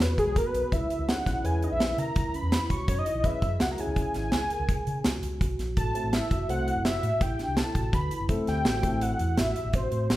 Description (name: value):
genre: progressive instrumental, band music in an uneven meter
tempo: 166 BPM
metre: 7/4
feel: straight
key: unclear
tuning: A4 = 440 Hz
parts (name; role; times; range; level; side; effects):
- wide unison lead; melody; 0.0-10.2 s; G#4 to C#6; -30 LUFS; equal; none
- vibraphone with soft mallets; arpeggios; 0.0-10.2 s; C#4 to A#4; -36 LUFS; right 3 dB; none
- fingered electric bass; bass; 0.0-10.2 s; F#1 to C#3; -31 LUFS; equal; none
- deep reggae drum kit; drums; 0.0-10.2 s; hi-hat, kick drum, snare drum; -28 LUFS; equal; none
- dark baby grand piano; accompaniment; 1.1-9.1 s; G#3 to C5; -34 LUFS; left 2 dB; none
room: moderate recital hall reverb, RT60 1.4 s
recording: recorded in a church or concert hall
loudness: -25 LUFS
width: side -15 dB against mid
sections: 0.0-10.2 A section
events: none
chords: 0.0 Eadd9; 0.7 C#m; 5.8 Am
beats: 0.00 0.36 | 0.72 1.08 1.44 1.80 2.16 2.52 2.88 | 3.24 3.60 3.96 4.32 4.68 5.04 5.41 | 5.77 6.13 6.49 6.85 7.21 7.57 7.93 | 8.29 8.65 9.02 9.38 9.74 10.10